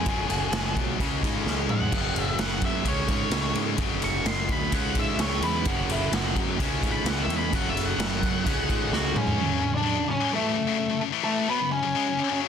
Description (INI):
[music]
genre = quiet-loud alternative rock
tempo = 129 BPM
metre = 4/4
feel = straight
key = F# minor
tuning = A4 = 440 Hz
[part]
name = octave-fuzz lead guitar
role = melody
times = 0.0-12.4 s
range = A3 to C#6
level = -29 LUFS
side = equal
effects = distortion
[part]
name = electric guitar through a small old amp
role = arpeggios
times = 0.0-1.9 s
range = C#3 to F#4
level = -38 LUFS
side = equal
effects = tape echo
[part]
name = heavy high-gain guitar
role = riff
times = 0.0-12.5 s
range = E2 to C#4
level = -30 LUFS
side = left 15 dB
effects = distortion
[part]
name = thick fuzz guitar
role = riff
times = 0.0-9.4 s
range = F#2 to C#4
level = -32 LUFS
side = right 16 dB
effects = distortion
[part]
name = growling fingered electric bass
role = bass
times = 0.0-9.4 s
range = F#1 to G#2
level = -31 LUFS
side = equal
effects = overdrive
[part]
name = raw garage drum kit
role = drums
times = 0.1-9.4 s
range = crash cymbal, kick drum, ride cymbal, snare drum, toms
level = -28 LUFS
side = equal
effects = none
[sound]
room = little or no reverb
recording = dense, heavily limited modern master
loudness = -23 LUFS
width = side -8 dB against mid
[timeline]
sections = 0.0-9.4 A section; 9.4-12.5 B section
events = lead electric guitar solo 0.0-9.4; drum fill 1.5-1.9, 8.9-9.4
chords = 0.1 F#sus2; 1.0 C#5; 1.9 F#5; 2.9 C#5; 3.8 F#5; 4.7 C#5; 5.7 F#5; 6.6 C#m; 7.5 F#5; 8.5 C#sus4; 9.4 F#m